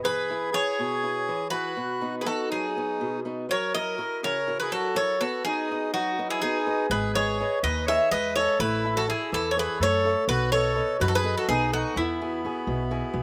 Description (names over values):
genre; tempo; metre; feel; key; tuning
greek folk; 247 BPM (eighths); 7/8; straight; E major; A4 = 442 Hz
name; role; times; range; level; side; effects
Greek bouzouki; melody; 0.0-13.2 s; E4 to E5; -29 LUFS; equal; slapback echo
accordion; second line; 0.0-13.2 s; B3 to C#5; -32 LUFS; equal; slapback echo
fingerpicked swing-style acoustic guitar; accompaniment; 0.0-13.2 s; B2 to E5; -34 LUFS; equal; none
upright bass; bass; 6.9-13.2 s; G#1 to F#2; -33 LUFS; equal; none
room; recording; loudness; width
little or no reverb; recorded outdoors, with no room sound; -26 LUFS; mono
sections
0.0-13.2 A section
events
speeding up 0.0-13.2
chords
0.0 E; 1.8 B; 3.5 F#7; 5.2 B; 6.9 G#m; 8.6 A; 10.3 B7; 11.9 Eadd9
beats
| 0.04 0.29 0.54 0.79 1.03 1.28 1.53 | 1.77 2.02 2.27 2.51 2.76 3.00 3.25 | 3.50 3.74 3.99 4.23 4.48 4.72 4.96 | 5.21 5.45 5.70 5.94 6.18 6.43 6.67 | 6.91 7.15 7.39 7.64 7.88 8.12 8.36 | 8.60 8.84 9.08 9.32 9.56 9.80 10.04 | 10.28 10.52 10.76 11.00 11.23 11.47 11.71 | 11.95 12.19 12.42 12.66 12.90 13.13